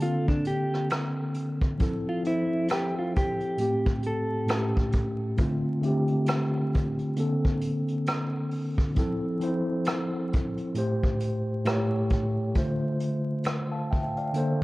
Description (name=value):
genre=lo-fi hip hop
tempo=67 BPM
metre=4/4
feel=swing 59% on 16ths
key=D minor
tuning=A4 = 440 Hz
part: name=mellow electric guitar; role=melody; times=0.0-4.7 s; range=D4 to A4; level=-30 LUFS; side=equal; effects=none
part: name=mellow tine electric piano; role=accompaniment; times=0.0-14.6 s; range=A2 to A5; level=-27 LUFS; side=equal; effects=medium stereo tremolo
part: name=vintage brush drum kit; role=drums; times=0.0-14.6 s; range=hi-hat, kick drum, rim click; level=-29 LUFS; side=equal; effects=none
part: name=finger snaps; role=percussion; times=0.9-13.7 s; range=none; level=-46 LUFS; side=right 2 dB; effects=none
room=moderate spring reverb, RT60 2.5 s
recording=worn, warbling old tape, cassette tape, vinyl crackle, warbly pitch drift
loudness=-25 LUFS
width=side -19 dB against mid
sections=0.0-14.6 A section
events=none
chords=0.0 Bbmaj7/D; 1.8 Fmaj7; 3.6 Am7; 4.5 A7; 5.4 Dm7; 7.2 Bbmaj7/D; 9.0 Fmaj7; 10.8 Am7; 11.7 A7; 12.6 Dm7